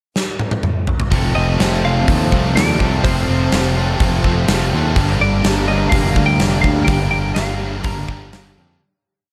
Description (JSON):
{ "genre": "rock, shoegaze and dream pop", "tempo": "125 BPM", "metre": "4/4", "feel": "straight", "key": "unclear", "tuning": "A4 = 440 Hz", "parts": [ { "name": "huge arena drum kit", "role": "drums", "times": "0.2-8.4 s", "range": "hi-hat, kick drum, snare drum, toms", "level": "-21 LUFS", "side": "equal", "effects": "none" }, { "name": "soft additive organ-like pad", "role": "sustained chords", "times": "2.5-8.8 s", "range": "C4 to Bb5", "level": "-30 LUFS", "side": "equal", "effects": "none" }, { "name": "distorted electric guitar", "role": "riff", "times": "1.1-8.8 s", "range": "F2 to D4", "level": "-26 LUFS", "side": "equal", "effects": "overdrive" }, { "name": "overdriven semi-hollow guitar", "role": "riff", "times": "1.1-8.8 s", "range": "F2 to D4", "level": "-26 LUFS", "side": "equal", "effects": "reverse reverb" }, { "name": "thick fuzz guitar", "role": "riff", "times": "1.1-8.8 s", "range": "F2 to G3", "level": "-26 LUFS", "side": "equal", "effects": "distortion, ensemble chorus" }, { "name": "growling fingered electric bass", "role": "bass", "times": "1.1-8.8 s", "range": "F1 to F2", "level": "-22 LUFS", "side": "equal", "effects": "overdrive" }, { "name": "twelve-string electric guitar", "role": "melody", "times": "1.4-8.5 s", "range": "C5 to Bb5", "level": "-25 LUFS", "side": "equal", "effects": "tape echo" } ], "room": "small room ambience", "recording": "none", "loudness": "-16 LUFS", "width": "mono", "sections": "0.0-1.1 pickup bar; 1.1-8.8 verse", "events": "drum fill 0.2-1.1; fade-out 6.9-8.8", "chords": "0.0 N.C.; 1.1 F; 5.0 Gm7", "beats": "0.16 0.64 | 1.12 1.60 2.08 2.56 | 3.04 3.52 4.00 4.48 | 4.96 5.45 5.92 6.41 | 6.89 7.37 7.85 8.33" }